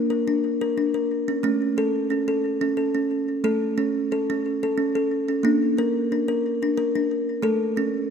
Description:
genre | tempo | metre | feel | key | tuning
world meditative, meditative tuned percussion | 90 BPM | 3/4 | straight | unclear | A4 = 441 Hz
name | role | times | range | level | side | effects
kalimba | solo | 0.0-8.1 s | A3 to Bb4 | -21 LUFS | equal | ping-pong delay
room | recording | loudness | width
wet concert hall reverb, RT60 2.2 s | dark, warm production | -21 LUFS | side -6 dB against mid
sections
0.0-8.1 A section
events
none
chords
0.0 Bb; 1.4 A; 5.4 Bb; 7.4 A

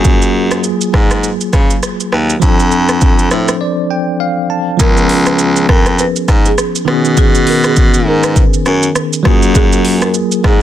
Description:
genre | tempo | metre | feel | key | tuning
afrobeats | 101 BPM | 4/4 | swing 58% on 16ths | Db mixolydian | A4 = 441 Hz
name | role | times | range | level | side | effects
bell-like tine electric piano | accompaniment | 0.0-10.6 s | Eb3 to A5 | -15 LUFS | equal | medium stereo tremolo
bright baritone saxophone | bass | 0.0-10.6 s | Db2 to Db3 | -14 LUFS | equal | none
afro-pop drum kit | drums | 0.0-10.6 s | hi-hat, kick drum, rim click, shaker | -13 LUFS | equal | none
folk marimba with medium mallets | melody | 4.8-10.6 s | Ab4 to Cb5 | -19 LUFS | equal | ping-pong delay
room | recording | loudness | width
digital ambience | dense, heavily limited modern master | -9 LUFS | side -11 dB against mid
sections
0.0-4.8 A section; 4.8-10.6 B section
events
tine electric piano fill 3.0-4.8; break 3.6-4.8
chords
0.0 Gbmaj9; 2.4 F6; 4.8 Db7; 6.9 Cb69; 9.3 Gbmaj9

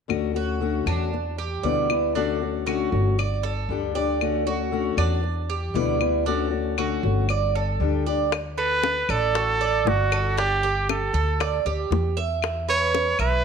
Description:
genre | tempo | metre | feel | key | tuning
latin, Cuban son and guajira | 117 BPM | 4/4 | straight | D major | A4 = 444 Hz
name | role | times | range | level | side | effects
fingerpicked acoustic archtop guitar | accompaniment | 0.1-8.3 s | B2 to G4 | -26 LUFS | left 11 dB | none
upright bass | bass | 0.1-13.4 s | G1 to E2 | -26 LUFS | equal | none
claves | percussion | 0.1-13.4 s | none | -31 LUFS | left 14 dB | none
Cuban tres | arpeggios | 0.4-13.4 s | D4 to E5 | -27 LUFS | right 8 dB | none
bongos | percussion | 8.3-13.2 s | none | -30 LUFS | left 11 dB | none
bright trumpet | melody | 8.6-13.4 s | F#4 to C#5 | -23 LUFS | right 2 dB | slapback echo
room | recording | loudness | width
moderate echo chamber reverb, RT60 1.5 s, small room reverb | 1960s-style stereo with parts hard left and right | -21 LUFS | side -6 dB against mid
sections
0.1-8.3 A section; 8.3-13.4 B section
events
none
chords
0.1 Dmaj7; 1.1 Em7; 2.2 Dmaj7; 3.2 Gsus2; 4.2 Dmaj7; 5.2 Em7; 6.3 Dmaj7; 7.3 Gsus2; 8.3 D; 10.4 Gsus2; 12.4 E5

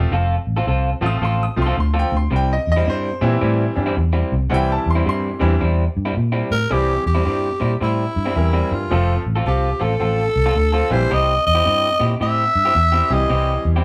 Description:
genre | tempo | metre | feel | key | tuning
electric blues shuffle | 109 BPM | 4/4 | swing 63% on 8ths | C mixolydian | A4 = 441 Hz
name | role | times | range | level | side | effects
bright concert grand piano | accompaniment | 0.0-13.8 s | E3 to Eb6 | -25 LUFS | equal | none
vintage muted fingered electric bass | bass | 0.0-13.8 s | F1 to Bb2 | -22 LUFS | equal | none
electric guitar through a small old amp | riff | 0.1-13.8 s | C3 to A4 | -26 LUFS | equal | none
growling tenor saxophone | melody | 6.5-13.7 s | E4 to E5 | -22 LUFS | equal | none
room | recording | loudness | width
moderate studio reverb, RT60 0.6 s | band playing live in one room | -19 LUFS | mono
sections
0.0-6.7 A section; 6.7-13.8 B section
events
none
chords
0.1 F; 2.3 C; 8.9 F; 11.1 C

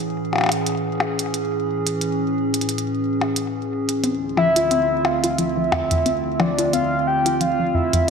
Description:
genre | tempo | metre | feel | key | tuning
IDM | 89 BPM | 4/4 | swing 56% on 16ths | unclear | A4 = 439 Hz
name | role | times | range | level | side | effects
warbly tape-like pad | sustained chords | 0.0-8.1 s | D2 to G#4 | -23 LUFS | right 1 dB | chorus, built-in reverb
electronic percussion blips and hi-hat | drums | 0.3-8.1 s | none | -25 LUFS | left 2 dB | none
warbly dusty pluck | arpeggios | 4.0-8.0 s | F2 to F4 | -23 LUFS | left 2 dB | chorus, ping-pong delay
warbly nostalgic lead | melody | 4.4-8.1 s | D5 to G5 | -20 LUFS | equal | chorus
room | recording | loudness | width
wet plate reverb, RT60 2.2 s | bright 1980s-style digital production | -18 LUFS | side -6 dB against mid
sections
0.0-8.1 A section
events
none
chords
0.0 Amaj7; 4.0 Dm7

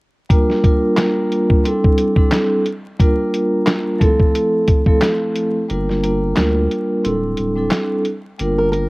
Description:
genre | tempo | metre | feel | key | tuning
hip hop, boom-bap hip-hop | 89 BPM | 4/4 | swing 55% on 16ths | G dorian | A4 = 439 Hz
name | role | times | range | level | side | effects
vibraphone with soft mallets | accompaniment | 0.3-8.9 s | F3 to Bb4 | -17 LUFS | equal | high-pass filter, low-pass filter, cassette tape
lo-fi sampler-style drum kit | drums | 0.3-8.9 s | handclaps, hi-hat, kick drum, snare drum | -16 LUFS | equal | cassette tape
saturated sub bass | bass | 5.7-8.9 s | D1 to D2 | -21 LUFS | equal | none
flamenco guitar | melody | 8.6-8.9 s | Bb4 | -18 LUFS | equal | high-pass filter, low-pass filter, cassette tape
room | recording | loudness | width
little or no reverb | home recording on cassette, vinyl crackle | -14 LUFS | side -23 dB against mid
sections
0.3-5.7 A section; 5.7-8.9 B section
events
break 5.7-8.9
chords
0.3 Gm7; 1.6 D9sus4; 3.0 Gm7; 4.0 Fmaj7; 5.7 Gm7; 7.0 D9sus4; 8.4 Gm7

